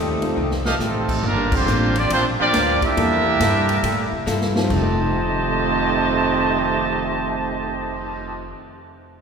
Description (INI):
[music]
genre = jazz, big band swing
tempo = 138 BPM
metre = 4/4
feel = swing 66% on 8ths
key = F mixolydian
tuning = A4 = 441 Hz
[part]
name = mellow saxophone section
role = melody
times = 0.0-1.1 s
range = G3 to A4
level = -30 LUFS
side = left 4 dB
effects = none
[part]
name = warm trombone section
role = second line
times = 0.0-8.5 s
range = F2 to E4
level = -25 LUFS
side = right 3 dB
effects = none
[part]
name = archtop guitar, miked and amplified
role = accompaniment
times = 0.0-8.7 s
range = G2 to A4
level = -29 LUFS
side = left 2 dB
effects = none
[part]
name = upright bass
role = bass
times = 0.0-8.5 s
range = F1 to A2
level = -25 LUFS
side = equal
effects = none
[part]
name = warm upright piano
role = accompaniment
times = 0.2-8.7 s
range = F2 to A4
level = -29 LUFS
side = left 3 dB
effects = none
[part]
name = swinging big-band drum kit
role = drums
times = 0.2-8.1 s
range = crash cymbal, cymbal swell, hi-hat, kick drum, ride cymbal, snare drum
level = -27 LUFS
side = equal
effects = none
[part]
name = clear trumpet section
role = stabs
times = 0.7-0.8 s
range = G4 to F5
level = -29 LUFS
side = right 2 dB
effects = none
[part]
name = clear trumpet section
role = melody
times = 0.8-8.5 s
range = G3 to A5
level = -21 LUFS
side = right 1 dB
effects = none
[sound]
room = wet church reverb, RT60 3.1 s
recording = recorded in a church or concert hall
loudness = -17 LUFS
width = side -6 dB against mid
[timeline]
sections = 0.0-1.2 A section; 1.2-4.7 B section; 4.7-8.2 C section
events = drum fill 0.4-0.8, 4.3-4.7; band accent 1.4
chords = 0.0 F9; 1.2 Gm7; 3.0 C13; 4.7 F9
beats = 0.36 0.80 | 1.23 1.67 2.10 2.53 | 2.97 3.40 3.83 4.27 | 4.70 5.13 5.57 6.00 | 6.43 6.87 7.30 7.74